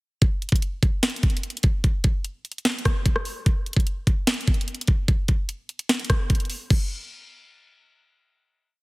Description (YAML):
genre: hip hop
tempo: 148 BPM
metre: 4/4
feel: half-time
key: none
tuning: none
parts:
  - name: trap drum kit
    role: drums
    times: 0.2-6.8 s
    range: crash cymbal, hi-hat, kick drum, rim click, snare drum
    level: -21 LUFS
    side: equal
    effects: none
room: little or no reverb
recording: heavily compressed radio sound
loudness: -21 LUFS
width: side -24 dB against mid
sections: 0.2-6.7 hook; 6.7-8.8 final hit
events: none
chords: none